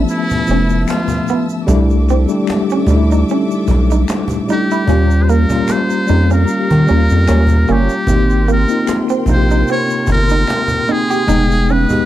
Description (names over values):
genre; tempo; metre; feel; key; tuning
R&B, neo-soul; 75 BPM; 4/4; swing 54% on 16ths; unclear; A4 = 436 Hz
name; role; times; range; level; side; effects
electric guitar through a small old amp; second line; 0.0-11.8 s; Bb3 to G4; -20 LUFS; right 8 dB; none
tine electric piano; accompaniment; 0.0-12.1 s; C3 to G5; -16 LUFS; left 2 dB; overdrive, fast stereo tremolo
warm studio string section; sustained chords; 0.0-12.1 s; Ab3 to E6; -28 LUFS; equal; none
round analog bass; bass; 0.0-11.9 s; F1 to Eb3; -13 LUFS; equal; none
trumpet with metal mute; melody; 0.1-12.1 s; E4 to Db5; -19 LUFS; equal; slapback echo
cajon; drums; 0.1-12.1 s; none; -22 LUFS; equal; none
egg shaker and finger snaps; percussion; 0.1-12.1 s; none; -34 LUFS; equal; none
muted trombone section; stabs; 7.3-7.9 s; G3 to Db4; -21 LUFS; right 4 dB; none
room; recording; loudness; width
little or no reverb; none; -11 LUFS; side -13 dB against mid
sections
0.0-12.1 A section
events
band accent 4.9-8.1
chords
0.0 G13; 1.7 C69; 4.9 Eb9; 8.1 Abmaj9; 11.3 Fm7b5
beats
0.08 0.88 | 1.68 2.48 3.28 4.08 | 4.88 5.68 6.48 7.28 | 8.08 8.88 9.68 10.48 | 11.28